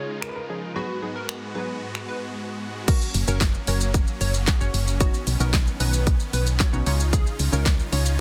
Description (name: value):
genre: dance-pop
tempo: 113 BPM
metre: 4/4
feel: straight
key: F# major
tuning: A4 = 442 Hz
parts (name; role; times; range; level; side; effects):
- clear grand piano; melody; 0.0-2.3 s; G#4 to B4; -39 LUFS; equal; low-pass filter, delay
- plucky unison lead; melody; 0.0-8.2 s; F#4 to C#5; -37 LUFS; equal; sidechain pumping, low-pass filter, delay
- supersaw chords; sustained chords; 0.0-8.2 s; G#2 to F#4; -36 LUFS; equal; sidechain pumping, low-pass filter
- pop drum kit; drums; 0.2-8.2 s; crash cymbal, finger snaps, handclaps, hi-hat, kick drum, shaker, snare drum; -25 LUFS; equal; soft clipping on snare
- glassy wavetable pluck; accompaniment; 0.5-8.2 s; E#3 to A#5; -35 LUFS; equal; chorus, sidechain pumping, low-pass filter
- solid FM bass; bass; 3.1-8.2 s; F#1 to C#2; -25 LUFS; equal; sidechain pumping
room: digital ambience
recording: dense, heavily limited modern master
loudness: -24 LUFS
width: mono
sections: 0.0-2.9 A section; 2.9-8.2 B section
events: silent gap 2.4-2.9; drop 2.9-8.2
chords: 0.0 C#add9; 0.8 G#m7; 2.9 F#; 5.0 Badd9; 6.9 C#add9